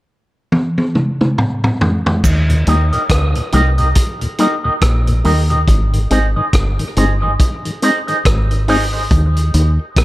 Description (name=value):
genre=dub reggae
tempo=70 BPM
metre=4/4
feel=swing 59% on 16ths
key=Eb major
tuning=A4 = 438 Hz
part: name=vintage drum kit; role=drums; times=0.5-10.0 s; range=crash cymbal, hi-hat, kick drum, rim click, toms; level=-16 LUFS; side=equal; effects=none
part: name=deep dub fingered electric bass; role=bass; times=2.2-10.0 s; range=G1 to Eb2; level=-14 LUFS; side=equal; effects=none
part: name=cabasa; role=percussion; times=2.2-2.5 s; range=none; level=-28 LUFS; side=right 6 dB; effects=none
part: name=mellow tonewheel organ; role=accompaniment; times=2.5-9.9 s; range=Eb2 to Eb4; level=-20 LUFS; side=left 2 dB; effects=chorus vibrato, stopped rotary speaker, high-pass filter
part: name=electric guitar with an envelope filter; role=accompaniment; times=2.7-9.0 s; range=Eb4 to Eb5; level=-19 LUFS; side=right 1 dB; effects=tremolo, high-pass filter, dub echo
room=light reverb, studio reverb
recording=none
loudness=-12 LUFS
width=side -17 dB against mid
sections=0.0-2.2 A section; 2.2-10.0 B section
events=drum fill 0.5-2.2; part muted 2.2-10.0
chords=0.0 N.C.; 2.2 Eb; 5.7 Ab; 9.1 Eb5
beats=0.52 1.38 | 2.24 3.10 3.96 4.81 | 5.67 6.53 7.39 8.25 | 9.11 9.97